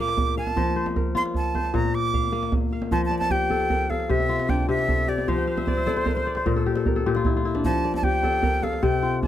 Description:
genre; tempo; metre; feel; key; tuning
west african traditional, West African string and xylophone music; 102 BPM (dotted quarters); 12/8; straight; F major; A4 = 435 Hz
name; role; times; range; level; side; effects
breathy bright jazz flute; melody; 0.0-9.3 s; C5 to D6; -26 LUFS; right 2 dB; none
kora; arpeggios; 0.0-9.3 s; Bb2 to G5; -24 LUFS; left 4 dB; none
djembe; percussion; 0.1-9.3 s; none; -26 LUFS; right 2 dB; none
room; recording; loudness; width
little or no reverb; close, detailed microphones; -21 LUFS; side -11 dB against mid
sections
0.0-2.9 A section; 2.9-9.3 B section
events
flute solo 0.0-2.9; kora fill 5.3-7.6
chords
0.0 Bb; 0.6 F; 1.7 Bb; 2.9 F; 4.1 C; 5.3 F; 6.5 N.C.; 7.6 F

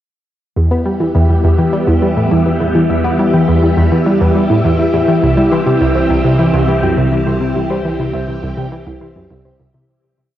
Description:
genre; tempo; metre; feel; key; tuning
ambient, sequencer-driven space music; 103 BPM; 4/4; straight; E minor; A4 = 441 Hz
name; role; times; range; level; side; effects
phased string machine; sustained chords; 0.6-9.8 s; E3 to G4; -17 LUFS; left 1 dB; ensemble chorus, phaser, cassette tape
soft round pluck; arpeggios; 0.6-9.8 s; E4 to C6; -22 LUFS; right 2 dB; chorus, auto-pan, cassette tape, tape echo
analog pluck; riff; 0.6-9.8 s; C2 to B3; -13 LUFS; equal; chorus, cassette tape, tape echo
warm sub bass; bass; 0.6-9.9 s; C2 to E2; -30 LUFS; equal; none
wind-like tuned noise texture; texture; 1.2-9.9 s; E4 to E5; -21 LUFS; equal; built-in reverb, cassette tape
room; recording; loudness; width
moderate spring reverb, RT60 1.5 s, digital ambience; home recording on cassette; -11 LUFS; side -12 dB against mid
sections
0.6-9.9 A section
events
fade-out 6.8-9.9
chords
0.6 Em; 5.2 C

